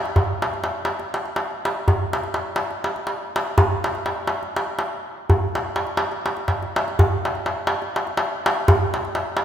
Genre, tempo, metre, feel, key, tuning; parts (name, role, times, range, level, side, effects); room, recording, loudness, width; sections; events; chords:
balkan folk; 247 BPM (eighths); 7/8; straight
darbuka; percussion; 0.1-9.4 s; -20 LUFS; equal
wet concert hall reverb, RT60 2.0 s; minimal, uncompressed stereo recording; -20 LUFS; side -10 dB against mid
0.2-9.4 A section